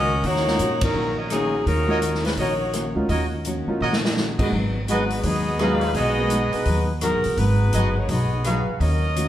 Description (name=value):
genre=jazz, big band swing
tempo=168 BPM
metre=4/4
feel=swing 62% on 8ths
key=unclear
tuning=A4 = 438 Hz
part: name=clear saxophone section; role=melody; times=0.0-8.6 s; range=Gb3 to F5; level=-24 LUFS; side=left 1 dB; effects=none
part: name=picked steel-string acoustic guitar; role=accompaniment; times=0.0-9.3 s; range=Ab2 to Gb4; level=-28 LUFS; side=left 2 dB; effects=none
part: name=upright bass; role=bass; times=0.0-9.3 s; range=G1 to Bb2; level=-24 LUFS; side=equal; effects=none
part: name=swinging big-band drum kit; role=drums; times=0.2-9.3 s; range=crash cymbal, hi-hat, kick drum, ride cymbal, rim click, snare drum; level=-28 LUFS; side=equal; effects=none
part: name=warm concert grand piano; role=accompaniment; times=0.5-6.3 s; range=Gb3 to Ab4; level=-27 LUFS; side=right 1 dB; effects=none
part: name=clear trumpet section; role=stabs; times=1.2-9.3 s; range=Gb4 to F5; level=-28 LUFS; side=right 2 dB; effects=none
room=wet large studio reverb, RT60 1.5 s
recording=heard from further back in the room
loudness=-19 LUFS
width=side -12 dB against mid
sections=0.0-9.3 A section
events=band accent 0.8; drum fill 3.8-4.2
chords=0.0 Ebm7; 4.5 Abm7